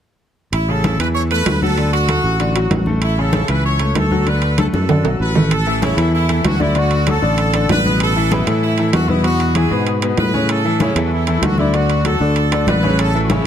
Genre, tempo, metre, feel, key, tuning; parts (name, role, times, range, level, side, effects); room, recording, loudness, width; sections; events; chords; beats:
latin, salsa; 193 BPM; 4/4; straight; A major; A4 = 440 Hz
bright horn section; melody; 0.5-13.5 s; E4 to C#5; -21 LUFS; right 2 dB; tape echo
fingered electric bass; bass; 0.5-13.5 s; A1 to A2; -18 LUFS; right 1 dB
congas; percussion; 0.5-13.5 s; -21 LUFS; left 1 dB
timbales; percussion; 0.5-13.5 s; -23 LUFS; right 6 dB
bright baby grand piano; accompaniment; 0.7-13.4 s; B2 to D5; -21 LUFS; left 4 dB
little or no reverb; close, detailed microphones; -14 LUFS; side -9 dB against mid
0.5-5.5 A section; 5.5-13.5 B section
drum fill 4.6-5.5
0.5 Aadd9; 1.8 D; 3.0 A; 4.3 D; 5.5 A; 6.8 D; 8.0 Asus2; 9.2 E; 10.5 A; 11.7 D
| 0.53 0.84 1.15 1.46 | 1.77 2.09 2.40 2.71 | 3.02 3.33 3.65 3.96 | 4.27 4.58 4.89 5.20 | 5.51 5.83 6.14 6.45 | 6.76 7.07 7.38 7.69 | 8.00 8.31 8.63 8.94 | 9.25 9.56 9.87 10.18 | 10.49 10.80 11.12 11.43 | 11.74 12.05 12.36 12.67 | 12.99 13.30